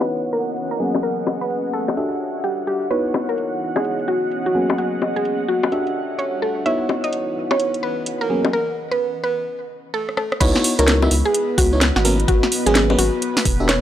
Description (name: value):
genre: UK garage, two-step garage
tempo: 128 BPM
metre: 4/4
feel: swing 63% on 16ths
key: C# dorian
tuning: A4 = 437 Hz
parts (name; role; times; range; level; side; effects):
- mallet-like synth pluck; melody; 0.0-13.8 s; F#4 to E5; -22 LUFS; equal; chorus, analog delay
- airy breathy pad; sustained chords; 0.0-13.8 s; B3 to F#5; -30 LUFS; right 1 dB; chorus, sidechain pumping
- FM electric piano; stabs; 0.0-13.7 s; F#3 to E5; -24 LUFS; left 1 dB; chorus, cassette tape, low-pass filter
- garage drum kit; drums; 0.0-13.8 s; bongos, crash cymbal, hi-hat, rim click, snare drum; -21 LUFS; left 2 dB; none
- ethereal airy pad; texture; 0.0-13.8 s; E3 to F#5; -31 LUFS; right 1 dB; ensemble chorus, built-in reverb, tremolo, sidechain pumping
- saturated sub bass; bass; 10.4-13.8 s; E1 to C#2; -20 LUFS; equal; tube saturation
- electronic kick drum; drums; 10.4-13.6 s; none; -20 LUFS; equal; overdrive
room: light reverb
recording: dry, gritty hardware recording, low-pass filter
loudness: -18 LUFS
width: side -11 dB against mid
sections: 0.0-10.4 A section; 10.4-13.8 B section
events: filter sweep 0.0-10.4; break 8.5-10.4; drum fill 10.1-10.4; drop 10.4-13.8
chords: 0.0 C#m11; 0.8 G#m11; 2.0 Em11; 2.9 C#m11; 4.5 G#m11; 5.7 Em11; 6.7 C#m11; 8.3 G#m11; 9.5 N.C.; 10.4 C#m11; 12.0 G#m11; 13.2 Em11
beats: 0.10 0.56 | 1.03 1.50 1.97 2.44 | 2.91 3.38 3.85 4.31 | 4.78 5.25 5.72 6.19 | 6.66 7.13 7.59 8.06 | 8.53 9.00 9.47 9.94 | 10.41 10.88 11.35 11.81 | 12.28 12.75 13.22 13.69